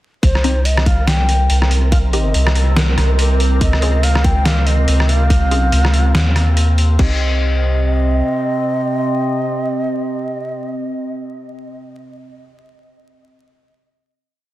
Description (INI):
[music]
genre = deep dubstep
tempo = 142 BPM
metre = 4/4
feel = swing 58% on 16ths, half-time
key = C phrygian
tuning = A4 = 440 Hz
[part]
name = breathy mellow long shakuhachi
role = melody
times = 0.2-11.1 s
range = C5 to G5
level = -24 LUFS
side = equal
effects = dub echo
[part]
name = overtone-sweeping drone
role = sustained chords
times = 1.2-11.2 s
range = C3 to C4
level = -23 LUFS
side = equal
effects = chorus, built-in reverb
[part]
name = soft dub sub bass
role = bass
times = 0.2-8.2 s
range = C2 to Eb2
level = -14 LUFS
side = equal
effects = none
[part]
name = electronic kick drum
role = drums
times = 0.2-7.1 s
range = none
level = -15 LUFS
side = equal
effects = overdrive
[part]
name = trip hop sampler-style drum kit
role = drums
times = 0.2-7.1 s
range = crash cymbal, hi-hat, rim click, snare drum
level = -21 LUFS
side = equal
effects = none
[part]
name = flickering grainy texture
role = texture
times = 0.8-7.0 s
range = Bb4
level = -29 LUFS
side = right 1 dB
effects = built-in reverb
[part]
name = filtered dub chord stab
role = stabs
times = 0.4-11.6 s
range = C4 to Ab4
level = -26 LUFS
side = left 3 dB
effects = phaser, dub echo
[sound]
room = digital ambience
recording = dense, heavily limited modern master, vinyl crackle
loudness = -13 LUFS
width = side -16 dB against mid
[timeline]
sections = 0.2-7.0 drop; 7.0-10.4 final chord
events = drop 0.2-7.0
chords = 0.2 Cm; 3.6 Db; 7.0 Cm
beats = | 0.23 0.65 1.07 1.50 | 1.92 2.34 2.77 3.19 | 3.61 4.03 4.46 4.88 | 5.30 5.72 6.15 6.57 | 6.99 7.41 7.84 8.26 | 8.68 9.10 9.53 9.95